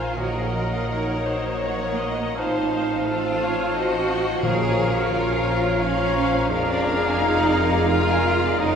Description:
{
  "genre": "classical, slow romantic movement for symphony orchestra",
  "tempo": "86 BPM",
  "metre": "3/4",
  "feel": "rubato",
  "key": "Bb minor",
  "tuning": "A4 = 440 Hz",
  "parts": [
    { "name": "rich chamber violin section", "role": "melody", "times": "0.0-8.8 s", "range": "Eb5 to Ab5", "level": "-32 LUFS", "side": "left 4 dB", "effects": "none" },
    { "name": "clear clarinet", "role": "second line", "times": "0.0-8.8 s", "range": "Bb4 to Db5", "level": "-32 LUFS", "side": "left 2 dB", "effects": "none" },
    { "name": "clear oboe", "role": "second line", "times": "0.0-8.8 s", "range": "Eb5 to F5", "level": "-30 LUFS", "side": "equal", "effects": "none" },
    { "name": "rich chamber violin section", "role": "second line", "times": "0.0-8.8 s", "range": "Bb4 to Ab5", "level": "-32 LUFS", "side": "left 3 dB", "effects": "none" },
    { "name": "silver concert flute", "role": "second line", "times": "0.0-8.8 s", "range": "A5 to Bb5", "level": "-31 LUFS", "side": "left 1 dB", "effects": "none" },
    { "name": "mellow bassoon", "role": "accompaniment", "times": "0.0-8.8 s", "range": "F3 to Ab3", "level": "-30 LUFS", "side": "equal", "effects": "none" },
    { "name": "rich chamber viola section", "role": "accompaniment", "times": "0.0-8.8 s", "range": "Ab4 to Eb5", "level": "-30 LUFS", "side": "equal", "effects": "none" },
    { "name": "warm French horn section", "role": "sustained chords", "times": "0.0-8.8 s", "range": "Bb3 to F4", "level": "-30 LUFS", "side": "left 4 dB", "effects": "none" },
    { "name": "clear chamber cello section", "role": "bass", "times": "0.0-8.8 s", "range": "Bb3 to Ab4", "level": "-25 LUFS", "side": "right 2 dB", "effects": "none" },
    { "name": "clear chamber double bass section", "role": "bass", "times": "0.0-8.8 s", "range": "F1 to Bb1", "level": "-28 LUFS", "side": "right 2 dB", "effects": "none" },
    { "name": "timpani", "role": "percussion", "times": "0.2-5.4 s", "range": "Bb2", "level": "-31 LUFS", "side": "equal", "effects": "none" }
  ],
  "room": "wet cathedral reverb, RT60 4.3 s",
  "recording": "recorded in a church or concert hall",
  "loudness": "-19 LUFS",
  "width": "side -7 dB against mid",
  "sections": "0.0-8.8 A section",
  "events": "none",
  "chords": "0.0 Bbm; 2.4 F7/A; 4.4 Bbm; 6.5 Bb7/F",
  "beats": "| 0.19 0.89 1.61 | 2.37 3.07 3.75 | 4.44 5.13 5.82 | 6.51 7.20 7.89 | 8.60"
}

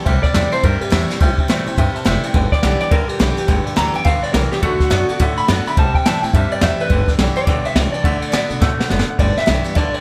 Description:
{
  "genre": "rockabilly",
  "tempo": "210 BPM",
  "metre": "4/4",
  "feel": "swing 62% on 8ths",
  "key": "G major",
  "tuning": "A4 = 440 Hz",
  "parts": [
    { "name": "clear upright piano", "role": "accompaniment", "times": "0.0-10.0 s", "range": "A4 to A5", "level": "-30 LUFS", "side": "equal", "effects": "none" },
    { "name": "picked steel-string acoustic guitar", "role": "accompaniment", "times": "0.0-10.0 s", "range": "G2 to G4", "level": "-28 LUFS", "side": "equal", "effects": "none" },
    { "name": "clean electric guitar", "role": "riff", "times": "0.0-10.0 s", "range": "G2 to B3", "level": "-27 LUFS", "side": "equal", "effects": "spring reverb" },
    { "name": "upright bass", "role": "bass", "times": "0.1-10.0 s", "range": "F1 to C3", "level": "-23 LUFS", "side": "equal", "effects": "none" },
    { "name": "jazz brush drum kit", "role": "drums", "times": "0.1-10.0 s", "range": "kick drum, ride cymbal, snare drum", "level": "-20 LUFS", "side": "equal", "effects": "none" },
    { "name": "electric guitar through a small old amp", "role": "melody", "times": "0.2-10.0 s", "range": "F#4 to B5", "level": "-23 LUFS", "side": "equal", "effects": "subtle chorus, digital delay" }
  ],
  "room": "small room ambience",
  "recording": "none",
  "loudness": "-17 LUFS",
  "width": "mono",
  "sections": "0.0-9.2 A section",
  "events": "clean electric guitar solo 0.0-9.2; drum fill 8.6-9.2",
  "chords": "0.1 C; 2.3 G; 4.6 D; 5.8 C; 6.9 G; 8.0 D; 9.2 G",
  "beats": "| 0.06 0.35 0.63 0.92 | 1.20 1.49 1.77 2.06 | 2.34 2.63 2.91 3.20 | 3.48 3.77 4.05 4.34 | 4.62 4.91 5.19 5.48 | 5.76 6.05 6.33 6.62 | 6.90 7.19 7.47 7.76 | 8.04 8.33 8.62 8.90 | 9.19 9.47 9.76"
}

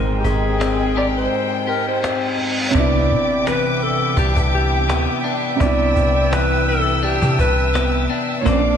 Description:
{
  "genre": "contemporary R&B",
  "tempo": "84 BPM",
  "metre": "4/4",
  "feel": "swing 54% on 16ths",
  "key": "C major",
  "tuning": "A4 = 440 Hz",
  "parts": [
    { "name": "felt-muted upright piano", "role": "accompaniment", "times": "0.0-8.8 s", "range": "Ab2 to Bb4", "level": "-24 LUFS", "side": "right 5 dB", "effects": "none" },
    { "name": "muted studio string section", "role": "sustained chords", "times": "0.0-8.8 s", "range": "Ab3 to E6", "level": "-24 LUFS", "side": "left 1 dB", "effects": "none" },
    { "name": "clean electric guitar", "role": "arpeggios", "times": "0.0-8.8 s", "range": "C3 to Bb4", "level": "-24 LUFS", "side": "left 6 dB", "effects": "wide subtle chorus, ping-pong delay" },
    { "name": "soft 808-style bass", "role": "bass", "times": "0.0-8.8 s", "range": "Ab1 to C3", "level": "-20 LUFS", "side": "equal", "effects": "none" },
    { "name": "breathy alto saxophone", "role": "melody", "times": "0.2-8.8 s", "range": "G4 to D5", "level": "-22 LUFS", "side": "equal", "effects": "ping-pong delay" },
    { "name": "cajon", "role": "drums", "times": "0.2-8.6 s", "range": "none", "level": "-27 LUFS", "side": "equal", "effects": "vintage 12-bit sampler grit" },
    { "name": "reverse cymbal and impact", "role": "sound effects", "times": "1.7-5.6 s", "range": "none", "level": "-27 LUFS", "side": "right 1 dB", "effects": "none" }
  ],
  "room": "moderate plate reverb, RT60 2.1 s",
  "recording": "dreamy mix soaked in reverb, lossy compression artefacts",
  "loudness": "-16 LUFS",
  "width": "side -8 dB against mid",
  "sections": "0.0-2.7 A section; 2.7-8.8 B section",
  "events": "kick muted 1.3-2.7; reverse cymbal 1.7-2.7; impact 2.7-5.6",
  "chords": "0.0 Abmaj9; 2.7 Cmaj9",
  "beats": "0.60 1.32 2.03 | 2.75 3.46 4.17 4.89 | 5.60 6.32 7.03 7.75 | 8.46"
}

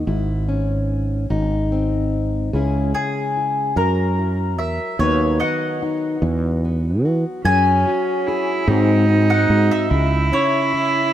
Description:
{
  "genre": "acoustic folk duo or small band",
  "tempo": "49 BPM (dotted quarters)",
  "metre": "6/8",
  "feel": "straight",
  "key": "C# minor",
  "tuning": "A4 = 440 Hz",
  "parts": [
    { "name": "mandolin", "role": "melody", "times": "0.0-11.1 s", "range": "E4 to D#6", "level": "-22 LUFS", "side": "left 2 dB", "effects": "none" },
    { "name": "fingerpicked plugged-in steel-string acoustic guitar", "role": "accompaniment", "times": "0.0-11.1 s", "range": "G#2 to B#4", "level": "-22 LUFS", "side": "left 2 dB", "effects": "none" },
    { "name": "fretless electric bass", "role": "bass", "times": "0.0-10.3 s", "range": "G#1 to E3", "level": "-19 LUFS", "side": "right 1 dB", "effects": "none" },
    { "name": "warm cello", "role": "second line", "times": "7.4-11.1 s", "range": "C#4 to E4", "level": "-19 LUFS", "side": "right 3 dB", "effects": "none" }
  ],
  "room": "moderate lush hall reverb, RT60 2.6 s",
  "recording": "rough home demo mix, faint mains hum",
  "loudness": "-17 LUFS",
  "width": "side -11 dB against mid",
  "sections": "0.0-2.5 A section; 2.5-11.1 B section",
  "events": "mandolin solo 2.5-11.1",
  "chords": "0.1 C#m/G#; 1.3 G#; 2.5 C#m; 3.8 F#7; 5.0 B/D#; 6.2 Esus2; 7.5 F#sus2; 8.7 G#7; 9.9 C#m",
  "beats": "| 0.07 1.30 | 2.53 3.76 | 4.99 6.22 | 7.45 8.68 | 9.91"
}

